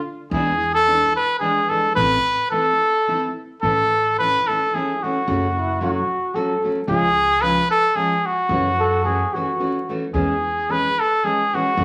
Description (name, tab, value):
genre	mexican folk, mariachi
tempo	110 BPM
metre	3/4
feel	swing 55% on 8ths, rubato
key	A minor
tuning	A4 = 437 Hz
part	bright trumpet	melody	0.0-11.8 s	F#4 to B4	-20 LUFS	equal	none
part	nylon-string guitar	accompaniment	0.3-11.8 s	E2 to G#4	-28 LUFS	equal	none
part	upright bass	bass	0.3-11.8 s	F#1 to F#2	-30 LUFS	equal	none
part	dark trumpet	second line	5.6-10.0 s	E4 to A4	-25 LUFS	equal	none
room	wet large studio reverb, RT60 0.9 s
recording	vinyl crackle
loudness	-20 LUFS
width	mono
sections	0.0-3.6 A section; 3.6-11.8 B section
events	none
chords	0.3 E7; 2.0 Am; 3.6 A; 5.3 F#m; 6.9 C#; 8.5 F#m7; 10.1 C#m/E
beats	| 0.32 0.87 1.41 | 1.96 2.51 3.07 | 3.63 4.18 4.73 | 5.28 5.82 6.36 | 6.89 7.42 7.96 | 8.50 9.05 9.60 | 10.15 10.70 11.24 | 11.78